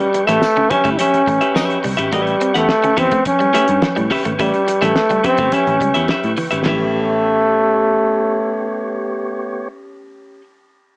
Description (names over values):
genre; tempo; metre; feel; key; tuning
funk; 106 BPM; 4/4; straight; A mixolydian; A4 = 440 Hz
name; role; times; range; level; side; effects
clear trombone; melody; 0.0-9.7 s; G3 to E4; -16 LUFS; equal; none
clean electric guitar; accompaniment; 0.0-10.4 s; C#4 to F#5; -21 LUFS; left 1 dB; spring reverb
tonewheel organ; sustained chords; 0.0-9.7 s; B3 to C#6; -26 LUFS; equal; slow rotary speaker
cloth-damped thuddy drum kit; drums; 0.0-6.8 s; hi-hat, kick drum, ride cymbal, snare drum, toms; -24 LUFS; equal; none
electric guitar at the edge of break-up; riff; 0.1-6.8 s; E3 to C#4; -24 LUFS; right 2 dB; none
congas; percussion; 0.2-6.9 s; none; -30 LUFS; right 1 dB; none
vintage muted picked electric bass; bass; 0.3-10.4 s; G1 to A2; -24 LUFS; equal; none
tambourine; percussion; 0.4-1.7 s; none; -35 LUFS; left 1 dB; none
room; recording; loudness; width
light reverb, studio ambience; small speaker sound; -13 LUFS; side -26 dB against mid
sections
0.0-6.7 A section; 6.7-8.9 B section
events
none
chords
0.0 A9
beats
0.43 0.99 1.56 | 2.13 2.69 3.26 3.83 | 4.39 4.96 5.53 6.09 | 6.66 7.22 7.79 8.36